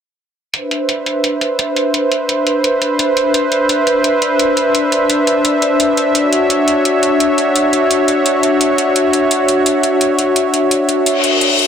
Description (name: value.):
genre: liquid drum and bass.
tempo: 171 BPM.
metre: 4/4.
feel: straight.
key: C major.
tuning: A4 = 440 Hz.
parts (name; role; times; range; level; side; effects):
warm analog pad; sustained chords; 0.5-11.7 s; D4 to E5; -12 LUFS; equal; chorus.
electronic hi-hat; drums; 0.5-11.7 s; none; -19 LUFS; equal; low-pass filter on hats, low-pass filter on room.
reverse cymbal; sound effects; 11.1-11.7 s; none; -13 LUFS; left 4 dB; none.
room: moderate lush hall reverb, RT60 2.4 s.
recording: dense, heavily limited modern master.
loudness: -12 LUFS.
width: side -8 dB against mid.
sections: 0.5-11.7 A section.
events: reverse cymbal 11.1-11.7.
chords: 0.5 Cmaj9; 6.2 Dmaj9.